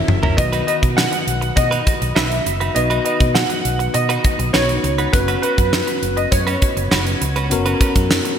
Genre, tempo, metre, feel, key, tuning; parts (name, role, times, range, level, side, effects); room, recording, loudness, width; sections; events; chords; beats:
1980s-style pop; 101 BPM; 4/4; straight; B major; A4 = 437 Hz
warm concert grand piano; melody; 0.0-8.4 s; B4 to F#5; -22 LUFS; right 1 dB; analog chorus
bell-like tine electric piano; accompaniment; 0.0-8.4 s; D#3 to B4; -24 LUFS; left 4 dB; fast stereo tremolo
direct-recorded clean electric guitar; riff; 0.1-8.3 s; C#4 to B4; -25 LUFS; right 4 dB; lush chorus, digital delay
mellow fretless electric bass; bass; 0.1-8.2 s; F#1 to B2; -22 LUFS; equal
gated 80s drum kit; drums; 0.1-8.4 s; hi-hat, kick drum, snare drum, toms; -19 LUFS; equal; gated reverb
moderate lush hall reverb, RT60 2.7 s; bright 1980s-style digital production; -15 LUFS; side -8 dB against mid
0.0-8.4 A section
drum fill 0.0-0.4
0.4 B; 5.1 F#sus4
| 0.38 0.98 1.57 2.16 | 2.76 3.35 3.95 4.54 | 5.13 5.73 6.32 6.92 | 7.51 8.11